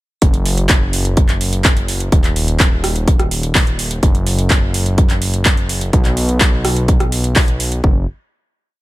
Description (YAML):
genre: EDM, festival progressive house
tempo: 126 BPM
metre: 4/4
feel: straight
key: unclear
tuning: A4 = 440 Hz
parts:
  - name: fat analog bass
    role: bass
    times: 0.2-8.1 s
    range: D#1 to B1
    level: -18 LUFS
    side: equal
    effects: tube saturation, sidechain pumping
  - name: electronic kick drum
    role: drums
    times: 0.2-7.9 s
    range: none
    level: -13 LUFS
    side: equal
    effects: none
  - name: pop drum kit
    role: drums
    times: 0.2-7.8 s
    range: handclaps, hi-hat, rim click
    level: -19 LUFS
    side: right 1 dB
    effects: overdrive
room: little or no reverb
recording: none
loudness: -13 LUFS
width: side -18 dB against mid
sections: 0.2-7.8 drop; 7.8-8.8 final note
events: drop 0.2-7.8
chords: none